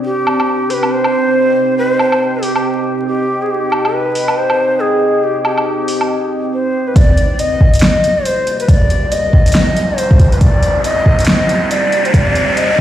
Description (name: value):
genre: deep dubstep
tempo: 139 BPM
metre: 4/4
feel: swing 59% on 16ths, half-time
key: C harmonic minor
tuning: A4 = 438 Hz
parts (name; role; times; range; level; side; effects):
- deep dark ambient pad; sustained chords; 0.0-12.8 s; C4 to G5; -19 LUFS; right 1 dB; chorus, built-in reverb
- hollow shakuhachi; melody; 0.1-12.8 s; G4 to Eb5; -15 LUFS; equal; dub echo
- deep house drum kit; drums; 0.3-12.7 s; hi-hat, snare drum, woodblock; -18 LUFS; equal; low-pass filter on perc, small room ambience, low-pass filter on hats, low-pass filter on snare
- soft dub sub bass; bass; 7.0-12.8 s; C2 to Eb2; -32 LUFS; right 1 dB; none
- electronic kick drum; drums; 7.0-12.8 s; none; -9 LUFS; equal; small room ambience
- riser; sound effects; 8.0-12.8 s; none; -21 LUFS; equal; none
room: moderate lush hall reverb, RT60 2.0 s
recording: played on a big sound system in a bare room, large studio reverb, vinyl crackle, high-pass filter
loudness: -11 LUFS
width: side -11 dB against mid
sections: 0.0-7.0 A section; 7.0-12.8 B section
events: filter sweep on ambient pad 0.0-7.0, 7.0-12.8; build-up 7.0-12.8; filter sweep 7.0-12.8; riser 8.0-12.8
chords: 0.0 Cm